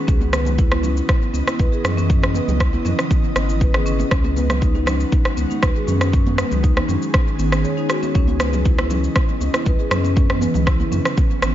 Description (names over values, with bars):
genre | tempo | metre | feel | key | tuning
afro house | 119 BPM | 4/4 | straight | C# minor | A4 = 440 Hz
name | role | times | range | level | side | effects
ethereal airy pad | sustained chords | 0.0-11.5 s | C#3 to D#5 | -26 LUFS | right 1 dB | ensemble chorus, built-in reverb, sidechain pumping
marimba with medium mallets | arpeggios | 0.0-11.5 s | C#4 to C#5 | -25 LUFS | left 2 dB | sidechain pumping, low-pass filter, dub echo
round analog bass | bass | 0.1-11.5 s | G#1 to F#2 | -21 LUFS | equal | sidechain pumping
electronic cabasa and rim click | drums | 0.1-11.5 s | none | -24 LUFS | right 1 dB | none
electronic kick drum | drums | 0.1-11.3 s | none | -18 LUFS | equal | none
congas | percussion | 0.2-11.5 s | none | -29 LUFS | right 4 dB | dub echo
room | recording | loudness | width
light reverb, digital ambience | echo-heavy mix, nothing above 7.5 kHz | -16 LUFS | side -12 dB against mid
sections
0.0-11.5 A section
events
break 7.6-8.1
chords
0.1 C#m9; 4.1 G#m7/C#; 8.1 C#m9